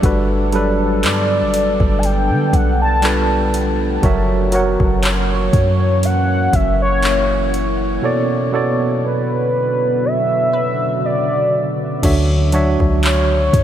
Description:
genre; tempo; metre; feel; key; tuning
contemporary R&B; 60 BPM; 4/4; swing 54% on 16ths; unclear; A4 = 441 Hz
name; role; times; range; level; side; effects
tine electric piano; accompaniment; 0.0-13.6 s; B2 to F#5; -19 LUFS; right 2 dB; medium stereo tremolo
deep dark ambient pad; sustained chords; 0.0-13.6 s; C#3 to A4; -24 LUFS; left 1 dB; chorus, built-in reverb
warm 808-style bass; bass; 0.0-13.6 s; F#1 to D3; -18 LUFS; equal; none
smooth R&B drum kit; drums; 0.0-13.6 s; crash cymbal, handclaps, hi-hat, kick drum; -21 LUFS; equal; none
glassy wavetable pluck; texture; 0.0-12.5 s; A#4 to C#5; -35 LUFS; equal; none
warm velvety synth lead; melody; 1.1-13.6 s; B4 to A5; -20 LUFS; equal; chorus, analog delay
room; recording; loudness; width
moderate huge ambient reverb, RT60 7.4 s; dreamy mix soaked in reverb; -14 LUFS; side -10 dB against mid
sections
0.0-12.0 A section; 12.0-13.6 A section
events
none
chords
0.0 Gmaj7; 3.0 G9; 4.0 F#7; 8.0 Bm7; 12.0 Dmaj7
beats
| 0.03 1.03 2.03 3.03 | 4.03 5.03 6.03 7.03 | 8.03 9.03 10.03 11.03 | 12.03 13.03

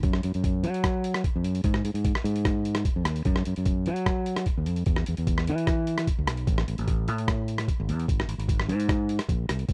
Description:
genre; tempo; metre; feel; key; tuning
calypso; 149 BPM; 4/4; straight; unclear; A4 = 440 Hz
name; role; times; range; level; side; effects
overdriven fingered electric bass; bass; 0.0-9.7 s; Ab1 to Gb3; -29 LUFS; equal; none
boom bap sampler-style drum kit; drums; 0.0-9.7 s; hi-hat, kick drum, rim click; -30 LUFS; equal; none
room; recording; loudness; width
little or no reverb; dry, close 1970s-style studio recording; -27 LUFS; mono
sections
0.0-9.7 A section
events
none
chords
none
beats
| 0.04 0.44 0.84 1.25 | 1.65 2.05 2.46 2.86 | 3.26 3.66 4.07 4.47 | 4.87 5.27 5.67 6.08 | 6.48 6.88 7.28 7.68 | 8.08 8.49 8.89 9.29 | 9.69

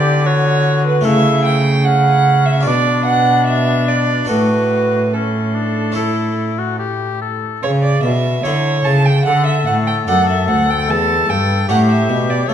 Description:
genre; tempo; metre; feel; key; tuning
classical, baroque-style sonata movement with continuo; 74 BPM; 4/4; straight; unclear; A4 = 440 Hz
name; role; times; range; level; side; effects
warm oboe; melody; 0.0-12.5 s; C#4 to A4; -21 LUFS; left 8 dB; none
rich violin; second line; 0.0-12.5 s; A4 to A5; -17 LUFS; right 4 dB; none
harpsichord; accompaniment; 0.0-12.5 s; D2 to A4; -20 LUFS; equal; none
rich cello; bass; 0.0-12.5 s; D2 to D3; -17 LUFS; equal; none
room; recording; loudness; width
wet recital hall reverb, RT60 1.5 s; dark, warm production; -13 LUFS; side -9 dB against mid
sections
0.0-7.6 A section; 7.6-12.5 B section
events
none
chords
0.0 Em7/D; 1.1 A/C#; 2.7 Bm; 4.3 D/A; 6.0 A; 9.3 D; 10.9 A7/E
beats
0.26 | 1.06 1.85 2.66 3.47 | 4.29 5.13 5.96 6.80 | 7.63 8.44 9.26 10.07 | 10.89 11.69 12.49

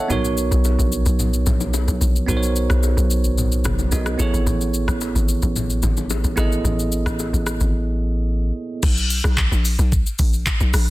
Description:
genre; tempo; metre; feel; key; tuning
amapiano; 110 BPM; 4/4; straight; B major; A4 = 441 Hz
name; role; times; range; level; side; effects
bell-like tine electric piano; accompaniment; 0.0-8.9 s; B3 to A5; -24 LUFS; right 3 dB; none
hollow log drum bass; bass; 0.1-10.9 s; F#1 to B1; -20 LUFS; equal; none
punchy sub bass; bass; 0.1-8.5 s; A1 to B1; -22 LUFS; equal; none
smooth R&B drum kit; drums; 0.1-10.9 s; crash cymbal, handclaps, hi-hat, kick drum, rim click, shaker; -24 LUFS; left 1 dB; none
congas and bongos; percussion; 0.1-7.3 s; none; -30 LUFS; left 5 dB; none
room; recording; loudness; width
digital ambience; dense, heavily limited modern master; -17 LUFS; side -18 dB against mid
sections
0.0-8.8 A section; 8.8-10.9 B section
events
drums muted 7.7-8.8; drop 8.8-10.9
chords
0.1 Bmaj9; 4.2 Amaj7; 8.8 B5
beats
| 0.10 0.65 1.19 1.74 | 2.28 2.83 3.37 3.92 | 4.46 5.01 5.56 6.10 | 6.65 7.19 7.74 8.28 | 8.83 9.37 9.92 10.46

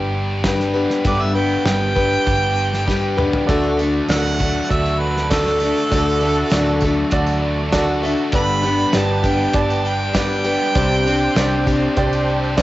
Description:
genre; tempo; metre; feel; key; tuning
folk rock and heartland rock; 99 BPM; 4/4; straight; unclear; A4 = 439 Hz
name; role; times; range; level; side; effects
picked steel-string acoustic guitar; accompaniment; 0.0-12.6 s; G2 to B4; -20 LUFS; left 3 dB; cassette tape
overdriven electric guitar; riff; 0.0-12.6 s; G2 to G4; -25 LUFS; right 1 dB; cassette tape
hollow-body short-scale picked electric bass; bass; 0.0-12.6 s; G1 to D2; -23 LUFS; equal; none
cloth-damped thuddy drum kit; drums; 0.4-12.6 s; hi-hat, kick drum, snare drum, toms; -22 LUFS; equal; cassette tape
warm harmonica; second line; 1.1-11.9 s; A4 to B5; -22 LUFS; right 3 dB; cassette tape, analog delay
clear grand piano; accompaniment; 3.5-12.6 s; F#4 to A5; -24 LUFS; right 3 dB; cassette tape
musette accordion; sustained chords; 3.5-12.6 s; A3 to C5; -30 LUFS; right 2 dB; none
tambourine; percussion; 3.6-12.6 s; none; -39 LUFS; right 5 dB; none
room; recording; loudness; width
light reverb, small room ambience; home recording on cassette, nothing above 7.8 kHz; -15 LUFS; side -16 dB against mid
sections
0.0-12.6 A section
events
harmonica solo 0.0-12.6; drum fill 2.9-3.5; grand piano fill 7.4-8.3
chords
0.0 G; 3.5 D; 8.3 G; 10.8 Csus2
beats
0.45 | 1.06 1.66 2.27 2.88 | 3.48 4.09 4.70 5.30 | 5.91 6.52 7.12 7.73 | 8.34 8.94 9.55 10.15 | 10.76 11.37 11.97 12.58

